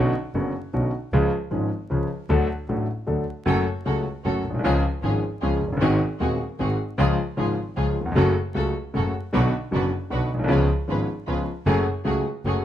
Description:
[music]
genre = tango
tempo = 154 BPM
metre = 3/4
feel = rubato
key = F# minor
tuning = A4 = 440 Hz
[part]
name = warm concert grand piano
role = accompaniment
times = 0.0-12.6 s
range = D#1 to A4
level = -23 LUFS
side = left 1 dB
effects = none
[part]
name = clear double bass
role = bass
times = 0.0-12.6 s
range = F#1 to D#2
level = -26 LUFS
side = equal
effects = none
[part]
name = warm studio string section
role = stabs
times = 3.5-12.6 s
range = A3 to B4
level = -31 LUFS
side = right 1 dB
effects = none
[sound]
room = little or no reverb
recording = dark, warm production, vinyl crackle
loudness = -21 LUFS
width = side -11 dB against mid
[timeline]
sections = 0.0-12.6 A section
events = none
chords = 0.0 Bmadd9; 1.1 C#; 2.3 D; 3.5 F#m; 4.6 C#; 5.8 G#7; 7.0 C#; 8.2 F#m; 9.3 Bm; 10.5 C#7; 11.7 F#madd9

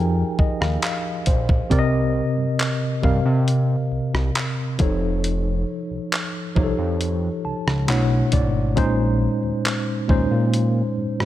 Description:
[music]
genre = contemporary R&B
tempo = 68 BPM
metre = 4/4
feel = straight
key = unclear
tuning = A4 = 437 Hz
[part]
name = mellow tine electric piano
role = accompaniment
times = 0.0-11.3 s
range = Bb2 to Bb5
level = -22 LUFS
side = left 1 dB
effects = medium stereo tremolo
[part]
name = fat analog bass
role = bass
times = 0.0-11.3 s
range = F1 to C3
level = -23 LUFS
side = equal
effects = none
[part]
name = dusty soul sampler-style drum kit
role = drums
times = 0.4-11.3 s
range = handclaps, hi-hat, kick drum, rim click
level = -22 LUFS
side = equal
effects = none
[sound]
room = light reverb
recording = none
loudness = -19 LUFS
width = side -13 dB against mid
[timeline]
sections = 0.0-11.3 A section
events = tine electric piano fill 0.0-1.7, 7.0-8.8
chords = 0.0 Fm9; 1.7 Cm7; 4.8 F7b13; 7.9 Bm11; 8.8 Bbm11

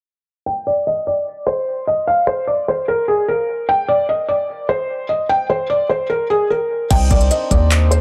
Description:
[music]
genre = hip hop, trap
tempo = 149 BPM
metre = 4/4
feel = half-time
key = C minor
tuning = A4 = 441 Hz
[part]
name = felt-muted upright piano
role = melody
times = 0.5-8.0 s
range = Ab4 to G5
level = -19 LUFS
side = equal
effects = low-pass filter, dub echo
[part]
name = pedal harmonium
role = sustained chords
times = 6.9-8.0 s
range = C4 to Eb4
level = -28 LUFS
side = equal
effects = none
[part]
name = long sustained 808-style bass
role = bass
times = 6.9-8.0 s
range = C2 to Eb2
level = -16 LUFS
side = equal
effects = none
[part]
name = trap drum kit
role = drums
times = 6.9-8.0 s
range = crash cymbal, handclaps, hi-hat, kick drum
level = -20 LUFS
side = equal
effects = none
[sound]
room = light reverb, digital ambience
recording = echo-heavy mix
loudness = -18 LUFS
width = mono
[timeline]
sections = 0.5-6.9 A section; 6.9-8.0 B section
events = filter sweep on felt piano 0.5-6.9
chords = 0.5 N.C.; 6.9 Cmadd9

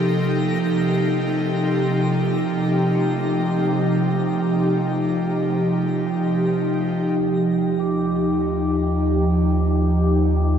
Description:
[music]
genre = ambient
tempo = 50 BPM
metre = 4/4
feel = straight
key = Eb lydian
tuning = A4 = 439 Hz
[part]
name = airy breathy pad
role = sustained chords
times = 0.0-10.6 s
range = C3 to G4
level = -19 LUFS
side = right 1 dB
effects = chorus
[part]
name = vibraphone with soft mallets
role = arpeggios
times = 0.0-10.6 s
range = A3 to D6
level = -34 LUFS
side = left 4 dB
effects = ping-pong delay
[part]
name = twinkling granular texture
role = texture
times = 0.0-7.2 s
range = Bb3 to Bb6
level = -37 LUFS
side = equal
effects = built-in reverb
[part]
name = round analog bass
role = bass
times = 7.2-10.6 s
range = Eb2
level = -21 LUFS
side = left 1 dB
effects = none
[sound]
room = wet huge ambient reverb, RT60 7.9 s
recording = dreamy mix soaked in reverb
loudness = -18 LUFS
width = side -8 dB against mid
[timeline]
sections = 0.0-7.2 A section; 7.2-10.6 B section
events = none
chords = 0.0 Cm7; 7.2 Ebmaj7

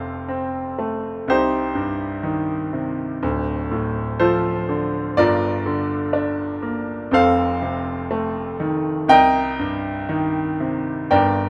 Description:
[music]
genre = classical, lyrical solo piano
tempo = 61 BPM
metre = 4/4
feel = rubato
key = unclear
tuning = A4 = 440 Hz
[part]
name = bright concert grand piano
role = solo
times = 0.0-11.5 s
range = D1 to G5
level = -21 LUFS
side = equal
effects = none
[sound]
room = light reverb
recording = none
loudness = -21 LUFS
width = mono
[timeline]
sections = 0.0-11.5 A section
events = none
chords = 0.0 F; 1.3 Cm; 3.2 Dm7; 5.2 Gm7; 7.1 F7; 9.1 Cm7

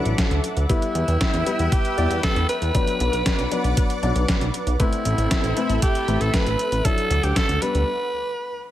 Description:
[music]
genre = italo disco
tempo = 117 BPM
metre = 4/4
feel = straight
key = A dorian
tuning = A4 = 435 Hz
[part]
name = lush unison pad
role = sustained chords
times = 0.0-7.9 s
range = C4 to E6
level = -29 LUFS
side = left 1 dB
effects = chorus, phaser
[part]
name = warm baby grand piano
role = stabs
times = 0.0-7.9 s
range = F#3 to D5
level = -28 LUFS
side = left 4 dB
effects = tape echo
[part]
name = chorused synth bass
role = bass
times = 0.1-7.8 s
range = A1 to E2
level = -23 LUFS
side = equal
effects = none
[part]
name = detuned 8-bit digital drum machine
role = drums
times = 0.1-7.8 s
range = hi-hat, snare drum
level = -27 LUFS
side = equal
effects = gated reverb
[part]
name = electronic kick drum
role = drums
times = 0.2-7.5 s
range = none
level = -23 LUFS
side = equal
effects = none
[part]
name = growling alto saxophone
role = melody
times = 0.7-8.6 s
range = E4 to B4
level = -25 LUFS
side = right 1 dB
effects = tape echo
[sound]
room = light reverb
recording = none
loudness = -19 LUFS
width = side -13 dB against mid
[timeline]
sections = 0.0-8.7 A section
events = break 7.9-8.7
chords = 0.0 Dadd9; 0.7 Em; 2.7 Bm; 4.8 Amadd9; 6.8 Dadd9; 7.9 N.C.

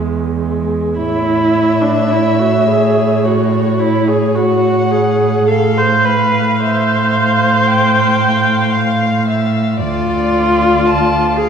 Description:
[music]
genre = classical, slow romantic movement for string quartet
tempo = 46-58 BPM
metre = 4/4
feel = rubato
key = unclear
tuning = A4 = 440 Hz
[part]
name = muted viola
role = accompaniment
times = 0.0-11.5 s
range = G#3 to C5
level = -14 LUFS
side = right 1 dB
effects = none
[part]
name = muted cello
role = bass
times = 0.0-11.5 s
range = D2 to A2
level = -16 LUFS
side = right 2 dB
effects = none
[part]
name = muted violin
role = melody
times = 1.0-11.5 s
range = C#5 to F5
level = -24 LUFS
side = left 7 dB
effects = none
[part]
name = muted violin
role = second line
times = 1.0-11.5 s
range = C#5 to A5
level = -20 LUFS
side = left 1 dB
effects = none
[sound]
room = wet concert hall reverb, RT60 2.3 s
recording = recorded in a church or concert hall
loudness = -11 LUFS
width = side -7 dB against mid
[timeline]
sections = 1.0-11.5 A section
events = none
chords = 0.0 E; 1.0 A; 5.5 F/A; 9.8 Dm

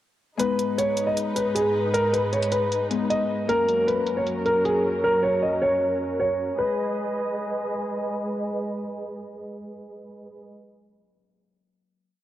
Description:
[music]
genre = hip hop, trap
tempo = 155 BPM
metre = 4/4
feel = half-time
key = G# minor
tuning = A4 = 440 Hz
[part]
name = dark concert grand piano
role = melody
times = 0.4-7.7 s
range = G#4 to D#5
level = -23 LUFS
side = equal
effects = cassette tape
[part]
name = Celtic harp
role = accompaniment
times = 0.4-6.7 s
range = F#3 to B4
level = -30 LUFS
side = left 5 dB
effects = none
[part]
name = muted studio string section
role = sustained chords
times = 0.4-10.4 s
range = F#2 to D#5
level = -28 LUFS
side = right 1 dB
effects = none
[part]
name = electronic hi-hat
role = drums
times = 0.4-4.7 s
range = none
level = -34 LUFS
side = right 1 dB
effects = cassette tape
[sound]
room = moderate lush hall reverb, RT60 2.0 s, small room ambience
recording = home recording on cassette, low-pass filter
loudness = -22 LUFS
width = side -13 dB against mid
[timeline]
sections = 0.4-6.6 breakdown; 6.6-9.7 final chord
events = filter sweep 0.4-6.6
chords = 0.4 G#m; 3.5 F#; 6.6 G#m

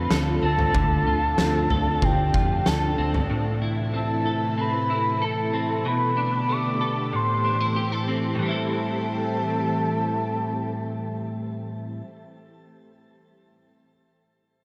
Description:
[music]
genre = dream pop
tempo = 94 BPM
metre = 4/4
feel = straight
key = A minor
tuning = A4 = 440 Hz
[part]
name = soft octave-layered synth lead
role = melody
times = 0.0-11.7 s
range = G5 to D6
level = -29 LUFS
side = equal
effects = chorus, tremolo, tape echo, shimmer reverb
[part]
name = soft string machine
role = sustained chords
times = 0.0-11.7 s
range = C3 to G4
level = -32 LUFS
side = equal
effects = ensemble chorus, shimmer reverb
[part]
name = clean electric guitar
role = arpeggios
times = 0.0-12.2 s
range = A2 to A4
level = -30 LUFS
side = equal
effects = ensemble chorus, tape echo
[part]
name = vintage muted fingered electric bass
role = bass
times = 0.0-3.3 s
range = D2 to F2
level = -29 LUFS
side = equal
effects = none
[part]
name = oversized low-tuned drum kit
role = drums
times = 0.1-3.3 s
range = kick drum, snare drum, toms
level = -28 LUFS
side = equal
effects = none
[part]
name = vibraphone with soft mallets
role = texture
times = 0.4-1.9 s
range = none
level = barely audible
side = none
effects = none
[sound]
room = moderate huge ambient reverb, RT60 4.2 s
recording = none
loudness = -24 LUFS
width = mono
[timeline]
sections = 0.0-8.4 A section; 8.4-11.0 B section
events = none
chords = 0.0 Dm7; 3.3 Am; 5.8 Gadd9/B; 7.1 Am7

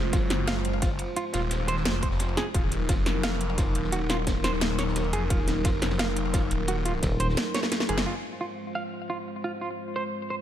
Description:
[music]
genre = dark technical drum and bass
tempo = 174 BPM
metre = 4/4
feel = straight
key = F phrygian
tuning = A4 = 440 Hz
[part]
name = dark analog pad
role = sustained chords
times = 0.0-10.4 s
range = Gb3 to C5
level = -32 LUFS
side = left 1 dB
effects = chorus, sidechain pumping
[part]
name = snarling distorted saw bass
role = bass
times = 0.0-8.0 s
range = Eb1 to Gb1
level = -29 LUFS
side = equal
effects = distortion, overdrive, sidechain pumping
[part]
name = semi-hollow electric guitar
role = arpeggios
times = 0.1-10.3 s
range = F4 to F5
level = -33 LUFS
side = right 2 dB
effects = tremolo, sidechain pumping, low-pass filter, ping-pong delay
[part]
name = crunchy breakbeat drum kit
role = drums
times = 0.1-8.1 s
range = ride cymbal, snare drum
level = -41 LUFS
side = equal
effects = high-pass filter on cymbals, high-pass filter on snare, high-pass filter on room
[part]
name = drum and bass drum kit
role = drums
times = 0.1-8.0 s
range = hi-hat, snare drum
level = -29 LUFS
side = equal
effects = none
[part]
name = electronic kick drum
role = drums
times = 0.1-7.1 s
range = none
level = -27 LUFS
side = equal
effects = none
[part]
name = pulsing pluck wobble bass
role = bass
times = 7.0-7.4 s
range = Eb1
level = -26 LUFS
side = equal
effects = chorus
[sound]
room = light reverb, digital ambience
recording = none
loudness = -25 LUFS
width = side -11 dB against mid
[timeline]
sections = 0.0-8.1 A section; 8.1-10.4 B section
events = drum fill 7.5-8.1; band accent 8.0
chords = 0.0 Fm; 2.5 Ebm; 8.1 Fm

